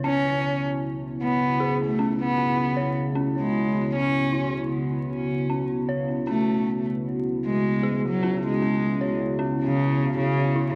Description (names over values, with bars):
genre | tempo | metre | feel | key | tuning
trip hop | 77 BPM | 4/4 | swing 60% on 16ths | unclear | A4 = 440 Hz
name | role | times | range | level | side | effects
dark analog pad | sustained chords | 0.0-10.8 s | C#3 to F#4 | -29 LUFS | equal | chorus, vintage 12-bit sampler grit
dark detuned synth bell | arpeggios | 0.0-10.8 s | C#4 to C#5 | -33 LUFS | equal | chorus, phaser, low-pass filter, digital delay
warm cello | melody | 0.1-10.7 s | C#3 to C#4 | -28 LUFS | equal | vintage 12-bit sampler grit, tape echo
room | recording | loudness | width
light reverb, small room ambience | worn, warbling old tape, cassette tape, vinyl crackle, warbly pitch drift | -25 LUFS | mono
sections
0.0-10.8 A section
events
none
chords
0.0 Bsus24/C#